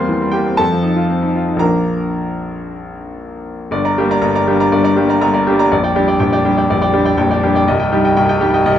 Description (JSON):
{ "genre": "classical, virtuoso piano study", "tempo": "111-125 BPM", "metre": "4/4", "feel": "rubato", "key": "Bb major, G minor from 3.7 s", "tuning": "A4 = 439 Hz", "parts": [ { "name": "bright grand piano", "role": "solo", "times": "0.0-8.8 s", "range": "Bb0 to C6", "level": "-13 LUFS", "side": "equal", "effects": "none" } ], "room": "moderate recital hall reverb, RT60 1.6 s", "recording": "close, detailed microphones", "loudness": "-12 LUFS", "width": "side -10 dB against mid", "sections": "0.0-3.7 A section; 3.7-8.8 B section", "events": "none", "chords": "0.0 C7/E; 0.6 F7; 1.6 Bb; 3.7 Gm; 5.7 Gm/Bb; 7.7 Cm", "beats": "0.10 0.59 1.10 | 1.61 2.15 2.67 3.19 | 3.72 4.22 4.73 5.22 | 5.71 6.20 6.70 7.18 | 7.67 8.16 8.65" }